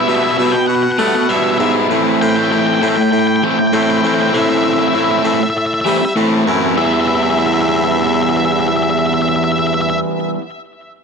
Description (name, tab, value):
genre	post-rock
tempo	98 BPM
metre	4/4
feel	straight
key	E minor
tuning	A4 = 440 Hz
part	octave-fuzz lead guitar	melody	0.0-10.0 s	E5 to G5	-18 LUFS	left 2 dB	distortion, tape echo
part	raw garage guitar	riff	0.0-10.4 s	A2 to E4	-15 LUFS	right 1 dB	overdrive
part	clear baritone saxophone	bass	0.1-10.0 s	E2 to A3	-18 LUFS	equal	none
room	light reverb, small room reverb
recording	none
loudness	-12 LUFS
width	side -5 dB against mid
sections	0.0-6.8 A section; 6.8-9.2 B section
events	none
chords	0.0 Emadd9/B; 1.9 Am7; 6.8 Em